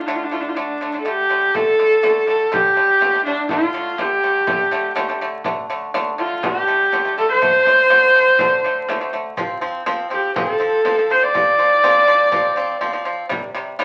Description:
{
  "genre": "mongolian traditional, Mongolian folk",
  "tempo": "122 BPM",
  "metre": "4/4",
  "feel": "straight",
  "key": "D yu mode",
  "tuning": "A4 = 440 Hz",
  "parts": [
    { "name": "clear horsehead fiddle", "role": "melody", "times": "0.0-13.1 s", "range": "D4 to D5", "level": "-17 LUFS", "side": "equal", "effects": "none" },
    { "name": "pipa", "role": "arpeggios", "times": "0.0-13.8 s", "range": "C3 to C4", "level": "-26 LUFS", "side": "equal", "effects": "none" },
    { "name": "frame drum", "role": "percussion", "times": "1.5-13.8 s", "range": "none", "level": "-32 LUFS", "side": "equal", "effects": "none" }
  ],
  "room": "wet studio reverb, RT60 0.6 s",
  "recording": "very old 78 rpm record, vinyl crackle",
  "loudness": "-17 LUFS",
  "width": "mono",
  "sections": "0.0-1.5 A section; 1.5-13.8 B section",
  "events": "none",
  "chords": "0.0 D5; 9.4 F5; 13.3 C5"
}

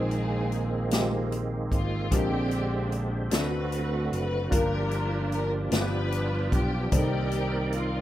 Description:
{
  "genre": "slow gospel",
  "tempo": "50 BPM (dotted quarters)",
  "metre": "6/8",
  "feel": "straight",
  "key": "unclear",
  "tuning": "A4 = 440 Hz",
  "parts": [
    { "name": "warm studio string section", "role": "melody", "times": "0.0-8.0 s", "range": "Bb3 to Cb5", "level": "-32 LUFS", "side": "left 2 dB", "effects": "slapback echo" },
    { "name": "warm upright piano", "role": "accompaniment", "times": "0.0-8.0 s", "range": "G2 to D5", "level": "-33 LUFS", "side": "left 2 dB", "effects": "none" },
    { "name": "bright tonewheel organ", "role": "sustained chords", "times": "0.0-8.0 s", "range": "D3 to D5", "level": "-32 LUFS", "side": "right 4 dB", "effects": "slow rotary speaker, chorus vibrato" },
    { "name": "fingered electric bass", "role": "bass", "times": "0.0-8.0 s", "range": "F#1 to D2", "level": "-30 LUFS", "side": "equal", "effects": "none" },
    { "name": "swinging big-band drum kit", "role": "drums", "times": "0.1-7.9 s", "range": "hi-hat, kick drum, snare drum", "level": "-29 LUFS", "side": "equal", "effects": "none" }
  ],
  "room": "small room reverb",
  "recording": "rough home demo mix",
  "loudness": "-25 LUFS",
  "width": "side -13 dB against mid",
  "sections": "0.0-8.0 A section",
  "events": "none",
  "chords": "0.0 Bb9sus4; 2.1 Bb13; 3.3 D7; 4.5 Gm7; 5.7 G7; 6.9 Cm9"
}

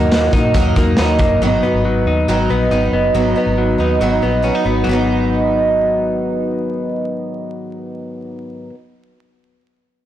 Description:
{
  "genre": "jangly indie pop",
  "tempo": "138 BPM",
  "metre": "4/4",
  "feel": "straight",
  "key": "G# minor",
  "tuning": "A4 = 440 Hz",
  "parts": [
    { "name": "picked twelve-string acoustic guitar", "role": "accompaniment", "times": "0.0-8.8 s", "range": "G#2 to D#4", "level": "-18 LUFS", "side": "right 5 dB", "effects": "lush chorus" },
    { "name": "direct-recorded clean electric guitar", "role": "arpeggios", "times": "0.0-8.8 s", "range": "F#3 to D#4", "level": "-19 LUFS", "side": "left 4 dB", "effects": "spring reverb" },
    { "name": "vintage muted fingered electric bass", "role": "bass", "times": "0.0-8.7 s", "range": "F#1 to A#2", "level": "-20 LUFS", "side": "equal", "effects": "transformer saturation" },
    { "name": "raw garage drum kit", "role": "drums", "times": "0.1-1.3 s", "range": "hi-hat, kick drum, snare drum", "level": "-17 LUFS", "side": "equal", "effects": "none" }
  ],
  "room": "light reverb, studio reverb",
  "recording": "blown-out, overdriven recording, vinyl crackle, overdrive",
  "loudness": "-13 LUFS",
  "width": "side -12 dB against mid",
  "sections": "0.0-4.9 A section; 4.9-8.3 B section",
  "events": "none",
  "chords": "0.0 D#m; 1.4 G#m7"
}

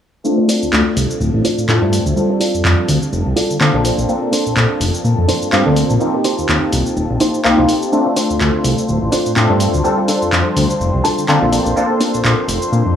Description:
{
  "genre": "filtered disco house",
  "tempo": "125 BPM",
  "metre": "4/4",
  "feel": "swing 57% on 16ths",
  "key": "unclear",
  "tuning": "A4 = 441 Hz",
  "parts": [
    { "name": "funky polysynth comp", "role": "accompaniment", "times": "0.2-13.0 s", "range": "G3 to A4", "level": "-17 LUFS", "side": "left 1 dB", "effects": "chorus, phaser, cassette tape, low-pass filter" },
    { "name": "bright chamber violin section", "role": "sustained chords", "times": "0.2-13.0 s", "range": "A4 to C6", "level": "-27 LUFS", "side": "left 2 dB", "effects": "vintage 12-bit sampler grit, low-pass filter" },
    { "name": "house drum kit", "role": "drums", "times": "0.2-12.8 s", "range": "handclaps, hi-hat, shaker", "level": "-20 LUFS", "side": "equal", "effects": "none" },
    { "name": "direct-recorded clean electric guitar", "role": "riff", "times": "0.4-12.5 s", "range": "C4 to A5", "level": "-20 LUFS", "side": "right 2 dB", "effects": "lush chorus, low-pass filter" },
    { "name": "fat analog bass", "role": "bass", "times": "0.6-12.9 s", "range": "D1 to D3", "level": "-16 LUFS", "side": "equal", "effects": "low-pass filter" }
  ],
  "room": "digital ambience",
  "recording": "dry, gritty hardware recording, studio ambience",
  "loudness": "-13 LUFS",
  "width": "side -9 dB against mid",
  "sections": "0.2-13.0 A section",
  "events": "filter sweep 0.2-13.0; clean electric guitar fill 10.8-11.8",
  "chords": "0.2 Dm7; 2.2 F6; 6.0 Eb6; 7.9 Dm7; 9.8 F6"
}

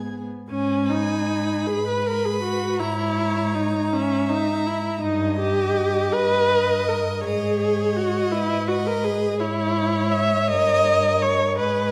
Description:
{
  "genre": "classical, slow romantic movement for string quartet",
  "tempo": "54 BPM (dotted quarters)",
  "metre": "6/8",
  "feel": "rubato",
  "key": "G# minor",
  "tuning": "A4 = 440 Hz",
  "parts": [
    { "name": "rich violin", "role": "melody", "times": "0.0-11.9 s", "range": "G#4 to G#5", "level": "-35 LUFS", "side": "equal", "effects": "none" },
    { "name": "rich violin", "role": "second line", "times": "0.0-11.9 s", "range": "G#4 to B5", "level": "-34 LUFS", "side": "equal", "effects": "none" },
    { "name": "warm viola", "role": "accompaniment", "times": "0.0-11.9 s", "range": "B3 to E5", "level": "-24 LUFS", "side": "equal", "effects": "none" },
    { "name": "warm cello", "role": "bass", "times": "0.0-11.9 s", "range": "G2 to G#2", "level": "-29 LUFS", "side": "equal", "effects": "none" }
  ],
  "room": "wet recital hall reverb, RT60 1.5 s",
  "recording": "none",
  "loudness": "-22 LUFS",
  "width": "mono",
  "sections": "0.5-11.9 A section",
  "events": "none",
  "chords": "0.0 G#m; 2.8 A#m7b5/G#; 5.0 D#/G; 7.2 G#m; 9.4 C#m/G#; 10.5 D#7/G"
}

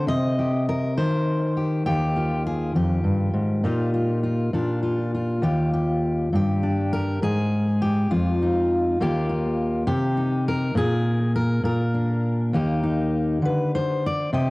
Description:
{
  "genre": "folk, solo fingerstyle acoustic guitar",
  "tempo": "67 BPM (dotted quarters)",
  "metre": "6/8",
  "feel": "straight",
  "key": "Eb major",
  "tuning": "A4 = 440 Hz",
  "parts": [
    { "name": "fingerpicked steel-string acoustic guitar", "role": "solo", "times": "0.0-14.5 s", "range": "Eb2 to Eb5", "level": "-20 LUFS", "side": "equal", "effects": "cassette tape, analog delay" }
  ],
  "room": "light reverb, small room ambience",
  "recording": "home recording on cassette",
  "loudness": "-20 LUFS",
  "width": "side -22 dB against mid",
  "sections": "0.0-5.4 A section; 5.4-14.5 B section",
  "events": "none",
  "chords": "0.1 Cm; 1.9 Eb; 3.6 Bbsus4; 4.5 Bb; 5.4 Ebadd9; 6.3 G5; 7.2 N.C.; 8.1 Ebsus2/F; 9.0 Ebadd9; 9.9 Cm; 10.8 N.C.; 11.7 Bb; 12.5 Eb; 13.4 N.C."
}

